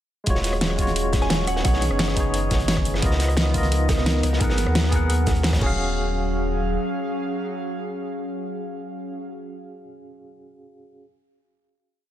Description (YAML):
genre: liquid drum and bass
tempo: 174 BPM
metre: 4/4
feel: straight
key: Eb minor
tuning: A4 = 440 Hz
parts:
  - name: barky tine electric piano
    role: accompaniment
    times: 0.2-11.1 s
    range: Ab3 to Gb5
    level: -29 LUFS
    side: equal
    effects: overdrive, fast tremolo, tape echo
  - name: airy breathy pad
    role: sustained chords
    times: 0.3-9.3 s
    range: D#3 to F5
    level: -29 LUFS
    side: equal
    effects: chorus
  - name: sub bass with octave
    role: bass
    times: 0.3-6.8 s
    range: Eb1 to Eb2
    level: -24 LUFS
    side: equal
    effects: tube saturation
  - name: crunchy breakbeat drum kit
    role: drums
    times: 0.3-5.6 s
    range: hi-hat, snare drum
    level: -31 LUFS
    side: equal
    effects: high-pass filter on hats, high-pass filter on snare, high-pass filter on room
  - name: electronic kick drum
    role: drums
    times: 0.3-5.7 s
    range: none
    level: -24 LUFS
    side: equal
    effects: none
  - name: pop drum kit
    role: drums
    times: 0.3-5.7 s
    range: crash cymbal, hi-hat, rim click, shaker, snare drum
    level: -26 LUFS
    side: equal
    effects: none
  - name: soft synth bell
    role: melody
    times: 1.2-2.0 s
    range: Gb5 to Ab5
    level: -31 LUFS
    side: right 2 dB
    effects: chorus, phaser, tape echo
  - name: bongos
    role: percussion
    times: 3.7-5.8 s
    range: none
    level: -35 LUFS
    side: right 4 dB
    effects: none
room: small room ambience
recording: none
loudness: -20 LUFS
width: side -12 dB against mid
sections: 0.3-5.8 drop; 5.8-8.5 final hit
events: drop 0.3-5.8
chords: 0.3 Ebm11; 1.6 B69; 3.0 Db13; 4.4 Abm9; 5.6 Ebm11